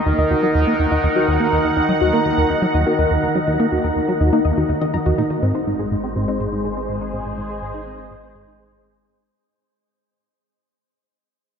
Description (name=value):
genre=ambient, sequencer-driven space music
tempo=123 BPM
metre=4/4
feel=straight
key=unclear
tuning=A4 = 439 Hz
part: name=sweeping resonant pad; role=sustained chords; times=0.0-9.3 s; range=Eb3 to Gb5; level=-20 LUFS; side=equal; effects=chorus
part: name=soft round pluck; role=arpeggios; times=0.0-9.3 s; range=C4 to Bb5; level=-23 LUFS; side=left 2 dB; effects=chorus, auto-pan, analog delay
part: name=wind-like tuned noise texture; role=texture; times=0.0-9.3 s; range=C5 to Eb5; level=-30 LUFS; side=right 1 dB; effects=built-in reverb
part: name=plucky analog bass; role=riff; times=0.1-9.3 s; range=Eb2 to Eb4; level=-21 LUFS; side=equal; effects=ensemble chorus, analog delay
part: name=warm sub bass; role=bass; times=5.4-9.3 s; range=Ab1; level=-36 LUFS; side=equal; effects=none
room=wet huge ambient reverb, RT60 9.1 s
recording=dreamy mix soaked in reverb, nothing above 7.6 kHz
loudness=-16 LUFS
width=side -7 dB against mid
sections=0.0-5.4 A section; 5.4-9.3 B section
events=fade-out on analog synth bass 5.4-9.3; fade-out on synth arpeggio sound 5.4-9.3; fade-out 5.4-9.3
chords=0.0 Ebm; 5.4 Ab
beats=0.06 0.55 1.03 | 1.52 2.01 2.50 2.99 | 3.47 3.96 4.45 4.94 | 5.42 5.91 6.40 6.89 | 7.38 7.86 8.35 8.84